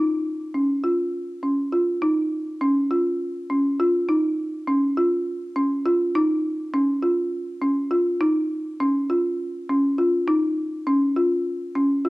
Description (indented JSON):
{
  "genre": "progressive instrumental, progressive",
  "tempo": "204 BPM (eighths)",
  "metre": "7/8",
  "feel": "straight",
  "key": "Db major",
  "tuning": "A4 = 441 Hz",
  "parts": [
    { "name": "folk marimba with medium hard mallets", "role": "solo", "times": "0.0-12.1 s", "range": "Db4 to F4", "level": "-20 LUFS", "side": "equal", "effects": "cassette tape" }
  ],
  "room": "studio ambience",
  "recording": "home recording on cassette",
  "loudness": "-20 LUFS",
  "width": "side -20 dB against mid",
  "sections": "0.0-2.0 A section; 2.0-12.1 B section",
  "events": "none",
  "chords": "none"
}